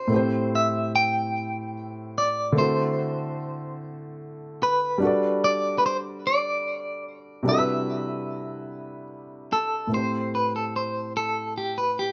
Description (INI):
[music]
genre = R&B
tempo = 49 BPM (dotted quarters)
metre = 6/8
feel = straight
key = A dorian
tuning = A4 = 440 Hz
[part]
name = clean electric guitar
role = melody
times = 0.0-12.1 s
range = G4 to G5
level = -28 LUFS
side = equal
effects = tremolo, plate reverb
[part]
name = warm grand piano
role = accompaniment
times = 0.0-12.1 s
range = A2 to D5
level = -30 LUFS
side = equal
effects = none
[sound]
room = moderate studio ambience, RT60 0.5 s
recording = none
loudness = -25 LUFS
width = mono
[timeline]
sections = 0.0-9.9 A section; 9.9-12.1 B section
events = none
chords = 0.1 Am7; 2.6 D9; 5.0 G5; 7.5 Cmaj9#11; 9.9 Am7